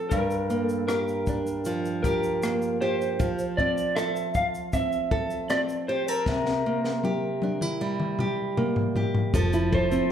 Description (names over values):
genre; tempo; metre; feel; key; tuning
acoustic pop; 78 BPM; 4/4; straight; F major; A4 = 444 Hz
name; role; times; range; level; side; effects
electric slide guitar; melody; 0.0-10.1 s; Bb4 to F5; -28 LUFS; right 1 dB; none
nylon-string guitar; accompaniment; 0.0-10.1 s; G2 to A4; -27 LUFS; right 1 dB; none
compact cocktail drum kit; drums; 0.1-10.1 s; kick drum, rim click, shaker, snare drum, toms; -29 LUFS; left 2 dB; none
upright bass; bass; 9.3-10.0 s; F1; -27 LUFS; left 1 dB; none
room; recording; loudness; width
wet large studio reverb, RT60 1.3 s; band playing live in one room; -24 LUFS; side -9 dB against mid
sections
0.0-9.3 A section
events
drum fill 6.3-9.3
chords
0.1 Gm7; 3.2 Fmaj7; 6.3 C7; 9.3 Fmaj7